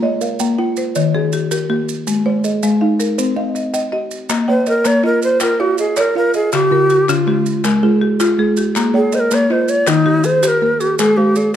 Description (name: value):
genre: southern african traditional, mbira-style interlocking cycle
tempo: 108 BPM (dotted quarters)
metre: 12/8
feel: straight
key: Bb equiheptatonic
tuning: A4 = 440 Hz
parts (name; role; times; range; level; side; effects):
- buzzing marimba with medium hard mallets; arpeggios; 0.0-11.6 s; Db3+43c to G5-43c; -17 LUFS; left 4 dB; none
- kalimba; arpeggios; 0.0-11.6 s; Db3+43c to G5-43c; -20 LUFS; right 5 dB; slapback echo
- maracas; percussion; 0.2-11.5 s; none; -27 LUFS; right 9 dB; none
- group handclap; percussion; 4.3-11.2 s; none; -27 LUFS; left 6 dB; none
- breathy bright low Native American-style wooden flute; melody; 4.5-11.5 s; Eb4 to Db5+42c; -14 LUFS; right 1 dB; none
room: moderate recital hall reverb, RT60 1.5 s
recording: dark, warm production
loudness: -13 LUFS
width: side -10 dB against mid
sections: 0.0-4.3 A section; 4.3-11.6 B section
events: none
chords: 0.0 Bbm; 1.0 Eb; 2.1 Ab; 3.2 Cm; 4.3 Bbm; 6.5 Db; 8.8 Bbm; 9.9 Eb; 11.0 Ab